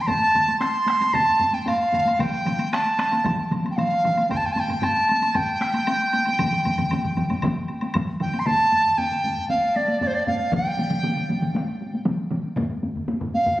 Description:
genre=japanese traditional, taiko drum ensemble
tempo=116 BPM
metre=4/4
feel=straight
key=G suspended pentatonic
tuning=A4 = 439 Hz
part: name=bright reedy large dizi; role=melody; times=0.0-13.6 s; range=C5 to C6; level=-21 LUFS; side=right 1 dB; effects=none
part: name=taiko ensemble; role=percussion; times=0.1-13.5 s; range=none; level=-28 LUFS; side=left 1 dB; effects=none
part: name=taiko ensemble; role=percussion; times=0.1-13.6 s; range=none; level=-33 LUFS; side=left 1 dB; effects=none
part: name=taiko ensemble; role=percussion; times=0.1-12.7 s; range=none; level=-34 LUFS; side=equal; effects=none
part: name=woodblock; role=percussion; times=0.1-8.5 s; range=none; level=-35 LUFS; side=left 1 dB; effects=none
part: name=taiko ensemble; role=percussion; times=2.2-12.4 s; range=none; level=-26 LUFS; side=equal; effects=none
room=moderate huge ambient reverb, RT60 3.9 s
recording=recorded on a phone in the room, studio reverb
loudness=-20 LUFS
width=side -15 dB against mid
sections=0.0-8.5 A section; 8.5-13.6 B section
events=speeding up 0.0-13.6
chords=none

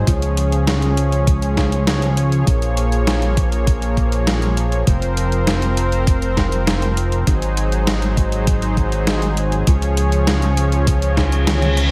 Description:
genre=synthwave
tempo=100 BPM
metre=4/4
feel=straight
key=unclear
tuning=A4 = 439 Hz
part: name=soft supersaw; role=sustained chords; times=0.0-11.9 s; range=F3 to Db5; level=-24 LUFS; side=equal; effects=sidechain pumping
part: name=chorused synth bass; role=bass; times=0.0-11.9 s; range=F1 to Db2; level=-21 LUFS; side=equal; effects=none
part: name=clean 12-bit digital drum machine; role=drums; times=0.1-11.9 s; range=hi-hat, snare drum, toms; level=-24 LUFS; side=equal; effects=gated reverb
part: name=electronic kick drum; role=drums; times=0.1-11.3 s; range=none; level=-20 LUFS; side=equal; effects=none
part: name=reverse cymbal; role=sound effects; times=11.1-11.9 s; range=none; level=-27 LUFS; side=equal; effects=none
room=light reverb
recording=none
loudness=-18 LUFS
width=mono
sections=0.0-11.9 A section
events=reverse cymbal 11.1-11.9; drum fill 11.5-11.9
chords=0.1 Db; 2.5 Bbm7; 4.9 Fsus4; 7.3 Ab7; 9.7 Db

